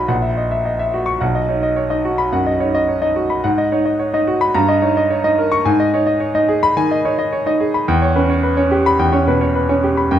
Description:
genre	classical, virtuoso piano study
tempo	108 BPM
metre	4/4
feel	rubato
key	unclear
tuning	A4 = 440 Hz
part	clear concert grand piano	solo	0.0-10.2 s	A#1 to C#6	-14 LUFS	equal	none
room	moderate large studio reverb, RT60 1.1 s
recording	dark, warm production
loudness	-14 LUFS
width	side -10 dB against mid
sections	0.0-10.2 A section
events	none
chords	0.1 F#7/A#; 1.2 B; 3.4 G#m7; 4.6 D#7/G; 5.7 G#m; 7.9 C#m7b5/E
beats	0.09 0.65 | 1.21 1.77 2.33 2.88 | 3.44 4.00 4.56 5.11 | 5.66 6.21 6.76 7.31 | 7.87 8.43 8.99 9.55 | 10.12

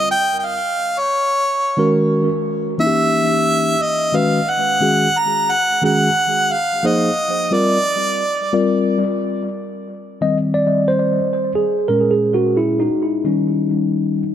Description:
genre	hip hop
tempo	89 BPM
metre	4/4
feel	swing 58% on 16ths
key	unclear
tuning	A4 = 440 Hz
part	warm harmonica	melody	0.0-8.9 s	Db5 to Bb5	-17 LUFS	right 1 dB	analog delay
part	mellow tine electric piano	accompaniment	1.8-14.3 s	Bb2 to Eb5	-17 LUFS	moving between left 4 dB and right 2 dB	auto-pan, analog delay
room	moderate echo chamber reverb, RT60 1.8 s, studio ambience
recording	echo-heavy mix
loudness	-15 LUFS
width	side -10 dB against mid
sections	0.0-9.2 A section; 9.2-14.3 B section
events	tine electric piano solo 9.2-14.3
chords	0.0 Ebadd9 (rootless); 1.1 Ebm7; 2.5 Eb7b9; 3.8 Ab7(no3); 6.5 Fm9; 7.9 Bb; 9.2 Eb6; 11.9 Bbm7b5; 13.2 Eb7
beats	0.44 | 1.11 1.78 2.46 3.13 | 3.81 4.48 5.16 5.83 | 6.50 7.18 7.85 8.53 | 9.20 9.87 10.55 11.22 | 11.90 12.57 13.24 13.92

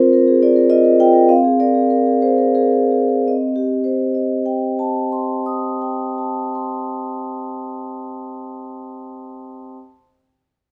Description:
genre	classical, contemporary piece for solo vibraphone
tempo	82-107 BPM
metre	3/4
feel	straight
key	C minor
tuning	A4 = 440 Hz
part	vibraphone with soft mallets	solo	0.0-9.8 s	C4 to Eb6	-18 LUFS	equal	none
room	moderate stone room reverb, RT60 1.1 s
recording	heard from further back in the room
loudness	-17 LUFS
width	mono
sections	0.0-3.3 A section; 3.3-7.6 B section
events	slowing down 0.0-3.3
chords	0.0 C7sus4; 1.3 Bb9/C; 3.3 Cm6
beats	0.13 0.70 | 1.29 1.92 2.58 | 3.30 4.01 4.73 | 5.44 6.15 6.86

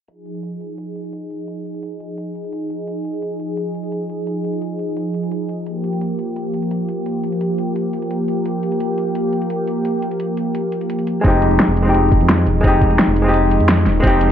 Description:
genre	liquid drum and bass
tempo	172 BPM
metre	4/4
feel	straight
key	F minor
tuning	A4 = 440 Hz
part	lush unison pad	sustained chords	0.1-14.3 s	F3 to Ab4	-21 LUFS	equal	chorus, sidechain pumping
part	pop drum kit	drums	0.1-14.3 s	hi-hat, snare drum	-19 LUFS	equal	overdrive
part	archtop guitar, miked and amplified	accompaniment	11.2-14.3 s	Ab3 to G4	-17 LUFS	left 1 dB	digital delay
part	smooth gliding synth bass	bass	11.2-14.3 s	Eb1 to F2	-17 LUFS	equal	none
part	electronic kick drum	drums	11.2-14.1 s	none	-16 LUFS	equal	overdrive
room	light reverb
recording	low-pass filter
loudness	-16 LUFS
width	side -9 dB against mid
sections	0.1-14.3 A section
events	filter sweep on analog synth pad 0.1-14.3; filter sweep 0.1-14.3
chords	0.1 Fm7; 5.7 Gm7; 11.2 Fm7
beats	| 0.08 0.43 0.78 1.13 | 1.48 1.83 2.18 2.52 | 2.87 3.22 3.57 3.92 | 4.27 4.62 4.97 5.32 | 5.67 6.01 6.36 6.71 | 7.06 7.41 7.76 8.11 | 8.46 8.80 9.15 9.50 | 9.85 10.20 10.55 10.90 | 11.25 11.60 11.94 12.29 | 12.64 12.99 13.34 13.69 | 14.04

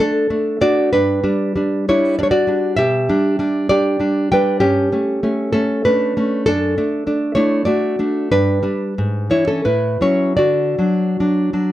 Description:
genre	romantic piece for solo classical guitar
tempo	73-100 BPM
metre	3/4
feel	rubato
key	D major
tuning	A4 = 440 Hz
part	nylon-string guitar	solo	0.0-11.7 s	F#2 to G5	-15 LUFS	equal	none
room	moderate small room reverb, RT60 0.5 s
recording	none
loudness	-15 LUFS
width	side -14 dB against mid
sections	0.0-11.7 A section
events	none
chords	0.0 D; 0.9 G; 2.8 G/B; 4.6 A7/G; 6.5 D/F#; 8.3 G; 9.0 E7/G#; 9.7 A69; 10.4 D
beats	0.31 | 0.93 1.56 2.18 | 2.79 3.39 4.01 | 4.62 5.22 5.85 | 6.46 7.07 7.68 | 8.33 8.98 9.65 | 10.41 11.20

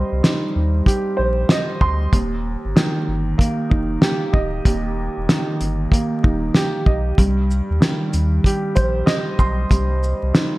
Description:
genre	hip hop, boom-bap hip-hop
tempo	95 BPM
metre	4/4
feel	swing 63% on 16ths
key	C minor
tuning	A4 = 440 Hz
part	dark upright piano	accompaniment	0.0-10.6 s	Eb2 to C6	-22 LUFS	right 1 dB	cassette tape, high-pass filter, low-pass filter
part	warm sub bass	bass	0.0-10.3 s	D1 to Eb2	-21 LUFS	equal	none
part	cloth-damped thuddy drum kit	drums	0.2-10.5 s	hi-hat, kick drum, shaker, snare drum	-17 LUFS	equal	gated reverb
room	light reverb, studio ambience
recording	bright 1980s-style digital production, vinyl crackle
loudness	-16 LUFS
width	side -19 dB against mid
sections	0.0-10.6 A section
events	none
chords	0.0 Cm; 2.1 Eb; 7.2 Cm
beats	0.23 0.86 1.50 | 2.13 2.76 3.39 4.02 | 4.65 5.29 5.92 6.55 | 7.18 7.81 8.44 9.07 | 9.71 10.34

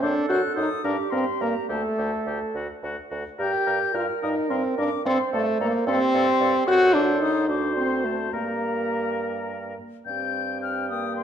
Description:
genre	quick classical-period movement for wind quintet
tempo	68-75 BPM (dotted quarters)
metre	6/8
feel	rubato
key	G minor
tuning	A4 = 439 Hz
part	concert flute	melody	0.0-11.2 s	A5 to G6	-30 LUFS	left 9 dB	none
part	clear oboe	second line	0.0-11.2 s	F#4 to G5	-33 LUFS	left 5 dB	none
part	clear French horn	accompaniment	0.0-11.2 s	A3 to G4	-24 LUFS	equal	none
part	warm clarinet	accompaniment	0.0-11.2 s	F#4 to C5	-31 LUFS	right 9 dB	none
part	warm bassoon	bass	0.0-11.2 s	D2 to G2	-31 LUFS	right 2 dB	none
room	wet recital hall reverb, RT60 1.4 s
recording	dark, warm production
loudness	-22 LUFS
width	side -8 dB against mid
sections	0.0-10.1 A section; 10.1-11.2 A section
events	none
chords	0.0 D7b9/F#; 0.8 Gm; 1.7 Dsus4; 3.4 Gm; 5.1 Gsus24; 6.7 D7b9/F#; 7.5 D7; 8.3 Gm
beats	| 0.02 0.84 | 1.70 2.55 | 3.40 4.23 | 5.06 5.87 | 6.67 7.48 | 8.33 9.20 | 10.07 10.90

